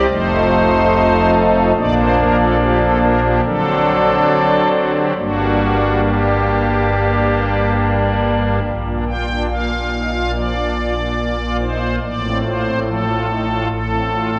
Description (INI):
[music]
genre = classical, chorale-style piece for pipe organ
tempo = 71 BPM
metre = 4/4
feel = straight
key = G minor, Bb major from 8.6 s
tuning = A4 = 442 Hz
[part]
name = pipe organ, strings celeste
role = solo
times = 0.0-14.4 s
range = F1 to G5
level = -16 LUFS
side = equal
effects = none
[sound]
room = wet church reverb, RT60 3.8 s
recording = heard from further back in the room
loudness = -16 LUFS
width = mono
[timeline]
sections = 0.0-8.6 A section; 8.6-14.4 B section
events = none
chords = 0.1 F7; 1.8 Bb; 3.4 D7; 5.2 Gm; 8.6 Bb; 12.0 F/A